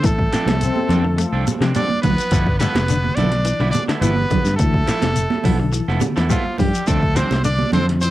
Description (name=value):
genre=afrobeat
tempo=105 BPM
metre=4/4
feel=straight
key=unclear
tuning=A4 = 441 Hz
part: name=bright trumpet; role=melody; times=0.0-8.1 s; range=F4 to D5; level=-24 LUFS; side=equal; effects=cassette tape, analog delay
part: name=breathy tenor saxophone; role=second line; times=0.0-8.1 s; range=F3 to D4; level=-31 LUFS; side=right 5 dB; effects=cassette tape
part: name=electric guitar at the edge of break-up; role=arpeggios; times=0.0-8.1 s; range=D3 to A3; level=-26 LUFS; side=left 6 dB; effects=tremolo, cassette tape
part: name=fingered electric bass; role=bass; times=0.0-8.1 s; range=F1 to C3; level=-20 LUFS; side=equal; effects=none
part: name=punchy analog drum machine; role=drums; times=0.0-8.1 s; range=hi-hat, kick drum, snare drum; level=-22 LUFS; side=equal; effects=cassette tape
part: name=congas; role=percussion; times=0.0-8.1 s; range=none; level=-24 LUFS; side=right 6 dB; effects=none
part: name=shekere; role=percussion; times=0.0-8.1 s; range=none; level=-26 LUFS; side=left 4 dB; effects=none
part: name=electric guitar at the edge of break-up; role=stabs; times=0.2-8.0 s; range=F3 to A4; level=-28 LUFS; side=right 5 dB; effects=cassette tape, analog delay
part: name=clear trombone section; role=second line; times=0.6-1.6 s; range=F3 to C4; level=-25 LUFS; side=left 6 dB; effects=cassette tape
room=light reverb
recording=home recording on cassette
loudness=-16 LUFS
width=side -15 dB against mid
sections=0.0-8.1 A section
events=none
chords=0.0 Dm7; 2.3 G13; 6.9 Dm7